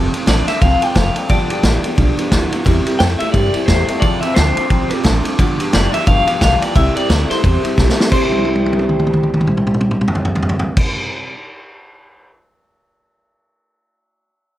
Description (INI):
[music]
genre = rockabilly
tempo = 176 BPM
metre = 4/4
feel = swing 60% on 8ths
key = C major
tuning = A4 = 440 Hz
[part]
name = picked steel-string acoustic guitar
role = accompaniment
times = 0.0-11.3 s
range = G2 to A4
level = -22 LUFS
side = left 2 dB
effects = none
[part]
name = electric guitar through a small old amp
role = riff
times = 0.0-11.3 s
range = F2 to E4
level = -22 LUFS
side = right 3 dB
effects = phaser
[part]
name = upright bass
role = bass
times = 0.0-10.8 s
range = F1 to G2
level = -19 LUFS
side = equal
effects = none
[part]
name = vintage drum kit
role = drums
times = 0.1-12.3 s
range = crash cymbal, kick drum, ride cymbal, snare drum, toms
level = -16 LUFS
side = equal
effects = none
[part]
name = electric guitar through a small old amp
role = melody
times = 0.3-10.8 s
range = C5 to G5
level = -20 LUFS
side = left 2 dB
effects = tremolo, tape echo
[sound]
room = light reverb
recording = none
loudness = -13 LUFS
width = side -14 dB against mid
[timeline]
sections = 0.0-8.1 A section; 8.1-10.8 B section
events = drum fill 7.8-8.1, 8.3-10.8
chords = 0.0 F; 1.3 G7; 2.7 C; 4.0 F; 5.4 G7; 6.8 C